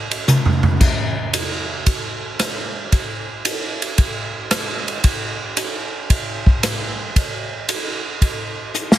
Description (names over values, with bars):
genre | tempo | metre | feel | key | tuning
jazz | 113 BPM | 4/4 | swing 69% on 8ths | none | none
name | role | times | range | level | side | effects
swinging big-band drum kit | drums | 0.1-9.0 s | crash cymbal, hi-hat, kick drum, ride cymbal, rim click, snare drum, toms | -18 LUFS | equal | none
room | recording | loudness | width
light reverb | heavily compressed radio sound | -18 LUFS | side -13 dB against mid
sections
0.0-9.0 A section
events
drum fill 0.3-0.8, 8.7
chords
none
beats
0.28 | 0.81 1.34 1.86 2.40 | 2.92 3.45 3.98 4.51 | 5.04 5.57 6.10 6.63 | 7.15 7.68 8.21 8.74